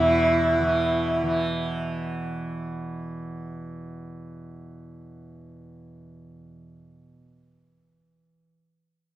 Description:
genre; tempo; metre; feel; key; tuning
indian classical, Hindustani; free time; none; none; unclear; A4 = 440 Hz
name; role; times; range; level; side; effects
rich sarangi; melody; 0.0-1.3 s; E4; -23 LUFS; equal; tape echo
tanpura; drone; 0.0-8.4 s; E2 to E3; -29 LUFS; right 2 dB; none
room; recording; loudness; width
moderate spring reverb, RT60 1.6 s, studio reverb; dark, warm production; -23 LUFS; side -14 dB against mid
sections
0.0-1.8 A section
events
none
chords
none

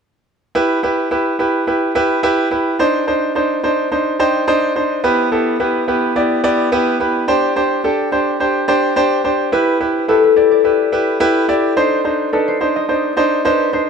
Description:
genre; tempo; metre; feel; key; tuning
pop; 107 BPM; 4/4; straight; G major; A4 = 439 Hz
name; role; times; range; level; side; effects
clear concert grand piano; accompaniment; 0.6-13.9 s; B3 to G5; -14 LUFS; right 1 dB; none
concert harp; melody; 9.5-13.9 s; A4 to Eb5; -16 LUFS; left 6 dB; none
room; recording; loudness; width
light reverb; none; -13 LUFS; side -6 dB against mid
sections
0.6-9.5 A section; 9.5-13.9 B section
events
grand piano fill 3.9-5.0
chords
0.6 G6; 2.8 Cmadd9; 5.0 G6/B; 7.3 D7sus4; 9.5 G6; 11.8 Cmadd9

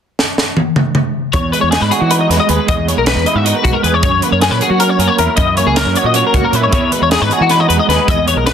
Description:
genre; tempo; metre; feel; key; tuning
math rock and midwest emo; 311 BPM (eighths); 7/8; straight; E lydian; A4 = 441 Hz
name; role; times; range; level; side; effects
crisp fusion drum kit; drums; 0.2-8.5 s; hi-hat, kick drum, snare drum, toms; -17 LUFS; equal; none
electric guitar through a small old amp; accompaniment; 1.3-8.5 s; E2 to G#4; -18 LUFS; right 10 dB; tremolo
twelve-string electric guitar; arpeggios; 1.3-8.5 s; F#4 to E5; -14 LUFS; left 6 dB; ensemble chorus, analog delay
growling fingered electric bass; bass; 1.3-8.5 s; B1 to F#3; -17 LUFS; equal; overdrive
room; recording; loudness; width
light reverb; dense, heavily limited modern master; -11 LUFS; side -8 dB against mid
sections
0.0-1.3 A section; 1.3-8.5 B section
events
drum fill 0.2-1.3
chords
0.0 N.C.; 1.3 Emaj9; 4.0 F#7; 6.7 Emaj9

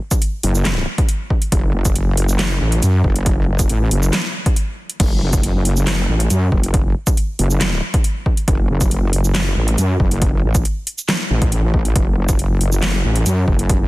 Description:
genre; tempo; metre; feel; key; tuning
heavy wobble dubstep; 138 BPM; 4/4; half-time; F# minor; A4 = 440 Hz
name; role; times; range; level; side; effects
dubstep drum kit; drums; 0.1-13.8 s; crash cymbal, handclaps, hi-hat, shaker, snare drum; -22 LUFS; equal; none
electronic kick drum; drums; 0.1-13.8 s; none; -17 LUFS; equal; none
wobble bass; bass; 0.4-13.9 s; F#1 to F#2; -16 LUFS; equal; chorus, overdrive
room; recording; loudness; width
little or no reverb; dense, heavily limited modern master; -15 LUFS; side -19 dB against mid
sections
0.0-13.9 A section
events
break 4.6-5.0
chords
none

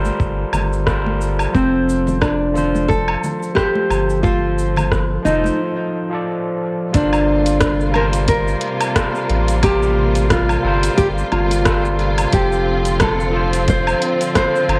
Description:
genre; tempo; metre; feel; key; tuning
sunset chillout; 89 BPM; 4/4; swing 56% on 16ths; G minor; A4 = 440 Hz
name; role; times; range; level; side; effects
overdriven tine electric piano; accompaniment; 0.0-14.8 s; F3 to A5; -25 LUFS; equal; tape echo
round analog bass; bass; 0.0-14.8 s; F1 to A1; -23 LUFS; equal; none
deep house drum kit; drums; 0.1-14.8 s; hi-hat, rim click, shaker, woodblock; -25 LUFS; equal; overdrive
congas; percussion; 0.1-5.6 s; none; -31 LUFS; equal; none
electronic kick drum; drums; 0.2-14.5 s; none; -22 LUFS; equal; overdrive
nylon-string guitar; melody; 1.5-14.8 s; C4 to C5; -22 LUFS; equal; tape echo
warm symphonic string section; sustained chords; 6.9-14.8 s; C3 to F4; -26 LUFS; equal; none
room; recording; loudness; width
moderate plate reverb, RT60 2.6 s; worn, warbling old tape, cassette tape, warbly pitch drift; -17 LUFS; mono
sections
0.0-6.9 A section; 6.9-14.8 B section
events
break 5.6-6.9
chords
0.0 Gm11; 1.5 Dm7/F; 6.9 Gm11; 12.3 Dm7/F

